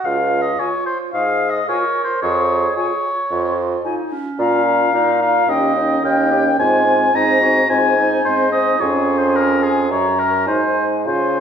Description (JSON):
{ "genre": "quick classical-period movement for wind quintet", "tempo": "109 BPM", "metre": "4/4", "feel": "rubato", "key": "Db major", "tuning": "A4 = 443 Hz", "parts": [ { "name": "warm oboe", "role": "second line", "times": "0.0-11.4 s", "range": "Ab4 to Bb5", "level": "-18 LUFS", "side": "left 1 dB", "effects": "none" }, { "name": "clear clarinet", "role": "accompaniment", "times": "0.0-11.4 s", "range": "Db4 to Bb4", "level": "-26 LUFS", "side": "right 5 dB", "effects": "none" }, { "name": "warm bassoon", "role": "bass", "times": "0.0-11.4 s", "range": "Db2 to Db3", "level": "-20 LUFS", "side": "right 2 dB", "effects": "none" }, { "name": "concert flute", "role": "melody", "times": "0.6-11.4 s", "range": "G5 to Bb5", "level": "-23 LUFS", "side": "left 7 dB", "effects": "none" }, { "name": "mellow French horn", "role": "accompaniment", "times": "0.6-11.4 s", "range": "C4 to Gb4", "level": "-23 LUFS", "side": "right 1 dB", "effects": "none" } ], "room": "wet recital hall reverb, RT60 1.2 s", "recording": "recorded in a church or concert hall", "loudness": "-14 LUFS", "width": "side -7 dB against mid", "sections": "0.0-11.4 A section", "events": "none", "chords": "0.0 Db; 2.2 Db/F; 4.4 Bbm; 5.5 Eb7; 6.6 Ab; 8.8 Db/F; 9.9 Gb; 10.5 Ab" }